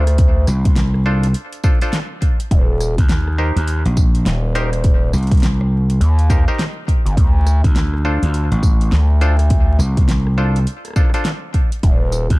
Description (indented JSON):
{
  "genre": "glitch hop",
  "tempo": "103 BPM",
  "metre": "4/4",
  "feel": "swing 62% on 16ths",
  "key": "D phrygian",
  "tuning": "A4 = 441 Hz",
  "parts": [
    { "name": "bright clav", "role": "stabs", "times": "0.0-11.3 s", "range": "D4 to C5", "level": "-25 LUFS", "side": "equal", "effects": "sidechain pumping, tape echo" },
    { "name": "gritty driven synth bass", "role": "bass", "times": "0.0-12.3 s", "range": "Eb1 to Eb2", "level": "-14 LUFS", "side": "equal", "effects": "overdrive" },
    { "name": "pop drum kit", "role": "drums", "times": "0.1-12.4 s", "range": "hi-hat, rim click, snare drum, tambourine", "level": "-26 LUFS", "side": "equal", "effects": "small room ambience" },
    { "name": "electronic kick drum", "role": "drums", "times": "0.2-12.4 s", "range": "none", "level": "-14 LUFS", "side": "equal", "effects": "small room ambience" },
    { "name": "gritty slap bass", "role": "bass", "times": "0.5-12.4 s", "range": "A1 to Eb2", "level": "-16 LUFS", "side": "equal", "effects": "overdrive" }
  ],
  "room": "little or no reverb",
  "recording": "dark, warm production, vinyl crackle",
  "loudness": "-13 LUFS",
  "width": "side -22 dB against mid",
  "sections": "0.0-12.4 A section",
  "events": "none",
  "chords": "0.0 Dm7; 2.5 Eb6; 7.2 Dm7; 11.8 N.C."
}